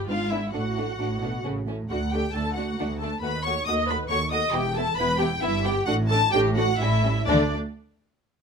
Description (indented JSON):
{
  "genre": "quick classical-period movement for string orchestra",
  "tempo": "123-138 BPM",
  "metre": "3/4",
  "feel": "straight",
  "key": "D major",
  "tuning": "A4 = 440 Hz",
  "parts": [
    { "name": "warm studio viola section", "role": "accompaniment", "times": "0.0-7.5 s", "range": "D4 to D#5", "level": "-28 LUFS", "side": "equal", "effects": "none" },
    { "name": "warm chamber cello section", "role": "bass", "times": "0.0-7.5 s", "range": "D2 to D3", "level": "-30 LUFS", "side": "right 2 dB", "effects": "none" },
    { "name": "warm chamber double bass section", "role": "bass", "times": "0.0-7.5 s", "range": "E1 to D#2", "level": "-30 LUFS", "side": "right 2 dB", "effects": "none" },
    { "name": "rich chamber violin section", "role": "melody", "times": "0.1-7.5 s", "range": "D5 to D#6", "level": "-28 LUFS", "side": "left 2 dB", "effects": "none" },
    { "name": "rich chamber violin section", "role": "second line", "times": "0.1-7.5 s", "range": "G3 to F#4", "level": "-31 LUFS", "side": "left 1 dB", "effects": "none" }
  ],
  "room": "light reverb",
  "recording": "none",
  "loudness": "-22 LUFS",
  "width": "side -6 dB against mid",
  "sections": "0.0-7.3 A section; 7.3-8.4 B section",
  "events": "slowing down 3.9-7.3",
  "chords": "0.1 G#dim7; 0.5 D/A; 1.4 A; 1.9 D; 3.2 B9/D#; 4.5 E5; 5.4 Em/G; 5.9 D5/A; 6.8 A7; 7.3 D5"
}